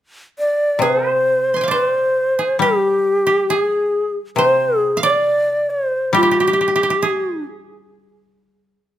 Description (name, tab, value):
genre	japanese traditional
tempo	68 BPM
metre	4/4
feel	rubato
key	G in sen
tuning	A4 = 439 Hz
part	bright long shakuhachi	melody	0.4-7.4 s	G4 to D5	-16 LUFS	equal	none
part	koto	second line	0.8-9.0 s	G4 to C6	-20 LUFS	right 4 dB	none
part	koto	accompaniment	0.8-8.8 s	C3 to G3	-22 LUFS	left 5 dB	none
room	light reverb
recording	close, detailed microphones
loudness	-15 LUFS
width	side -12 dB against mid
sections	0.8-9.0 A section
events	none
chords	none